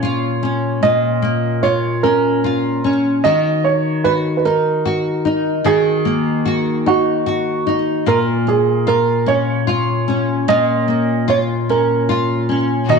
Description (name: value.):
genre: pop.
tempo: 50 BPM (dotted quarters).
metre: 6/8.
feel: straight.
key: unclear.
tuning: A4 = 440 Hz.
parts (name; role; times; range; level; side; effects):
dark baby grand piano; melody; 0.0-13.0 s; Gb4 to Eb5; -18 LUFS; right 6 dB; none.
nylon-string guitar; accompaniment; 0.0-13.0 s; Bb2 to Gb4; -17 LUFS; left 3 dB; double-tracked left and right.
warm studio string section; sustained chords; 12.9-13.0 s; Bb2 to Gb4; -17 LUFS; left 14 dB; none.
room: moderate echo chamber reverb, RT60 1.8 s, small room ambience.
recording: 1960s-style stereo with parts hard left and right.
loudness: -14 LUFS.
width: side -5 dB against mid.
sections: 0.0-13.0 A section.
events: none.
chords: 0.0 Bbm; 3.2 Ebm; 8.1 Bbm.